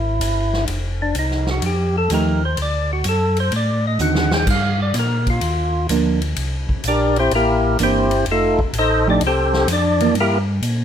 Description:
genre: soul jazz organ trio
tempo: 127 BPM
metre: 4/4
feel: swing 69% on 8ths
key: F mixolydian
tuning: A4 = 444 Hz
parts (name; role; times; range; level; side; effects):
- percussive tonewheel organ; melody; 0.0-10.4 s; A3 to G5; -19 LUFS; left 1 dB; slow rotary speaker, overdrive
- mellow tonewheel organ; bass; 0.0-10.8 s; F1 to Bb2; -21 LUFS; equal; chorus vibrato, slow rotary speaker
- swinging big-band drum kit; drums; 0.2-10.8 s; crash cymbal, hi-hat, kick drum, ride cymbal, snare drum; -26 LUFS; left 1 dB; none
- hollow-body jazz guitar; accompaniment; 2.1-10.1 s; D3 to G4; -20 LUFS; right 5 dB; none
room: light reverb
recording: none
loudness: -16 LUFS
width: side -9 dB against mid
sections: 0.0-10.8 A section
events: tonewheel organ solo 0.0-10.8; drum fill 4.0-4.5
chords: 0.0 N.C.; 0.7 F9; 2.6 D7b9; 4.5 Gm7; 6.4 C9; 8.3 F9; 10.2 Gm6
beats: 0.21 | 0.68 1.16 1.63 2.10 | 2.58 3.05 3.53 4.00 | 4.47 4.95 5.42 5.90 | 6.37 6.84 7.32 7.79 | 8.26 8.74 9.21 9.68 | 10.15 10.63

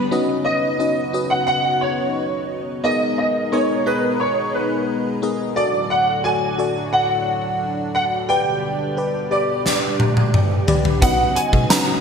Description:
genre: 1980s-style pop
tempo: 88 BPM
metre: 4/4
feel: straight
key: B major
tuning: A4 = 440 Hz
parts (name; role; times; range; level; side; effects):
- FM electric piano with soft pad layer; accompaniment; 0.0-12.0 s; G3 to A#5; -23 LUFS; left 2 dB; chorus, phaser, tremolo
- chorused pulse-width pad; sustained chords; 0.0-12.0 s; A2 to D#5; -27 LUFS; left 1 dB; none
- direct-recorded clean electric guitar; riff; 0.0-0.1, 11.0-12.0 s; F#3 to B3; -30 LUFS; right 4 dB; wide subtle chorus, ping-pong delay
- warm baby grand piano; melody; 0.4-12.0 s; B4 to A#5; -20 LUFS; right 1 dB; ensemble chorus
- gated 80s drum kit; drums; 9.7-11.9 s; hi-hat, kick drum, snare drum, tambourine, toms; -17 LUFS; equal; none
- slap-like FM bass; bass; 11.0-11.7 s; B1 to B2; -22 LUFS; equal; none
room: wet lush hall reverb, RT60 1.7 s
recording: bright 1980s-style digital production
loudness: -17 LUFS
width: side -6 dB against mid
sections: 0.1-12.0 A section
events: drum fill 9.7-11.0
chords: 0.1 Badd9; 2.8 G#madd9/B; 5.6 D; 8.3 G; 11.0 Badd9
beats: | 0.11 0.80 1.48 2.16 | 2.84 3.52 4.21 4.89 | 5.57 6.25 6.93 7.61 | 8.30 8.98 9.66 10.34 | 11.02 11.71

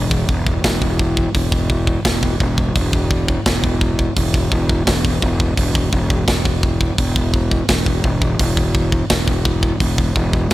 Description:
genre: heavy metal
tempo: 85 BPM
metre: 4/4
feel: straight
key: unclear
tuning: A4 = 440 Hz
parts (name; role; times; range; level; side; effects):
- fuzz fingered electric bass; bass; 0.0-10.5 s; E1; -18 LUFS; equal; overdrive
- tight metal drum kit; drums; 0.1-10.5 s; hi-hat, kick drum, snare drum; -18 LUFS; equal; none
room: little or no reverb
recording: none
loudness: -15 LUFS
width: side -16 dB against mid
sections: 0.0-10.5 A section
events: none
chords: none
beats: 0.64 1.35 2.05 | 2.76 3.46 4.17 4.87 | 5.58 6.28 6.99 7.69 | 8.40 9.10 9.81 10.51

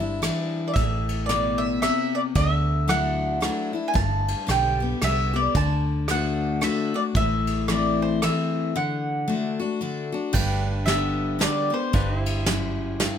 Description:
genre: honky-tonk and classic country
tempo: 113 BPM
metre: 3/4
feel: swing 60% on 8ths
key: G major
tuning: A4 = 440 Hz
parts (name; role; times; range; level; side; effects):
- mandolin; melody; 0.0-13.2 s; C5 to A5; -26 LUFS; right 1 dB; none
- picked steel-string acoustic guitar; accompaniment; 0.0-13.2 s; F#2 to G4; -26 LUFS; left 4 dB; none
- vintage muted fingered electric bass; bass; 0.0-13.1 s; G1 to D2; -27 LUFS; right 1 dB; none
- soft brush drum kit; drums; 0.2-13.2 s; crash cymbal, kick drum, ride cymbal, rim click, snare drum; -28 LUFS; right 1 dB; none
- pedal steel guitar; sustained chords; 10.3-13.2 s; D4 to C5; -32 LUFS; right 2 dB; none
room: light reverb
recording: close, detailed microphones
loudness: -21 LUFS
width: side -8 dB against mid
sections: 0.0-10.3 A section; 10.3-13.2 A section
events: break 8.7-10.3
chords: 0.0 Cadd9/G; 0.8 Am; 2.3 Dadd9; 3.9 G; 5.5 D; 7.1 Am; 8.7 D; 10.3 G; 11.9 C/G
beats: 0.22 | 0.75 1.28 1.81 | 2.35 2.88 3.41 | 3.95 4.48 5.01 | 5.54 6.08 6.61 | 7.14 7.68 8.21 | 8.74 9.27 9.81 | 10.34 10.87 11.40 | 11.94 12.47 13.00

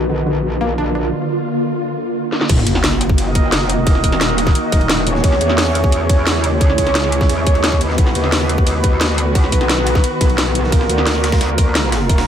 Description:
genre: dark technical drum and bass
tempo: 175 BPM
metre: 4/4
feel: straight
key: unclear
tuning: A4 = 443 Hz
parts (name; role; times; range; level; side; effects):
- swarming drone; sustained chords; 0.0-12.3 s; Db3 to Gb4; -22 LUFS; equal; built-in reverb, sidechain pumping
- metallic wobble bass; bass; 0.0-12.3 s; Eb1 to Fb2; -19 LUFS; equal; distortion, chorus, overdrive, sidechain pumping
- granular cloud pad; texture; 0.0-1.1 s; F4 to Bb4; -24 LUFS; equal; built-in reverb, sidechain pumping
- analog pluck; arpeggios; 0.1-1.0 s; D3 to D4; -23 LUFS; left 1 dB; chorus, sidechain pumping, dub echo
- drum and bass drum kit; drums; 2.3-12.2 s; crash cymbal, hi-hat, snare drum; -19 LUFS; equal; low-pass filter on snare, low-pass filter on hats, low-pass filter on cymbals, low-pass filter on room
- breakbeat sampler-style drum kit; drums; 2.5-12.3 s; hi-hat, ride cymbal, snare drum; -27 LUFS; right 1 dB; none
- electronic kick drum; drums; 2.5-12.2 s; none; -14 LUFS; equal; none
- sub drop; sound effects; 2.5-3.9 s; none; -23 LUFS; equal; none
- mellow brass ensemble; stabs; 3.3-12.3 s; Bb3 to Eb5; -21 LUFS; right 2 dB; vintage 12-bit sampler grit, dub echo
room: light reverb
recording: none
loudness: -13 LUFS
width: side -9 dB against mid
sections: 0.0-2.5 A section; 2.5-12.3 B section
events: filter sweep on synth arpeggio sound 0.0-2.5; drum fill 2.3; drop 2.5-12.3; impact 2.5-3.9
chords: 0.0 Bb; 2.5 Ebm; 5.2 Dbm; 8.0 B; 10.7 Bb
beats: 0.10 0.44 0.78 | 1.12 1.47 1.81 2.15 | 2.50 2.84 3.18 3.52 | 3.87 4.21 4.55 4.89 | 5.24 5.58 5.92 6.27 | 6.61 6.95 7.29 7.64 | 7.98 8.32 8.67 9.01 | 9.35 9.70 10.04 10.38 | 10.72 11.07 11.41 11.75 | 12.10

